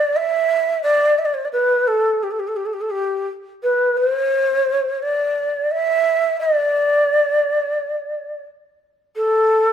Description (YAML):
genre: arabic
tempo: 87 BPM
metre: 4/4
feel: straight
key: D maqam rast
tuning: A4 = 439 Hz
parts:
  - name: breathy mellow ney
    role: solo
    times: 0.0-9.7 s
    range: G4 to E5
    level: -16 LUFS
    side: equal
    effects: none
room: moderate recital hall reverb, RT60 1.6 s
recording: none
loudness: -16 LUFS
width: side -8 dB against mid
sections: 0.0-9.1 A section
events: none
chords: none